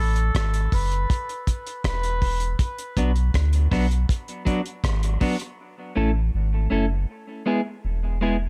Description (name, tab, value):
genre	dub reggae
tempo	80 BPM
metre	4/4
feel	straight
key	B dorian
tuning	A4 = 440 Hz
part	warm oboe	melody	0.0-2.6 s	A4 to B4	-33 LUFS	equal	dub echo
part	warm sub bass	bass	0.0-8.5 s	E1 to D2	-24 LUFS	equal	none
part	damped 70s drum kit	drums	0.2-5.6 s	hi-hat, kick drum, rim click	-27 LUFS	equal	none
part	clean electric guitar	accompaniment	3.0-8.4 s	F#3 to A4	-28 LUFS	equal	dub echo
room	small room reverb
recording	none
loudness	-24 LUFS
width	mono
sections	0.0-8.5 A section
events	break 0.0-2.6; part muted 5.6-8.5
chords	0.0 F#madd9; 1.1 E5; 2.6 Bm; 5.6 A; 7.1 E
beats	0.34 1.09 1.84 | 2.59 3.34 4.09 4.84 | 5.59 6.34 7.09 7.84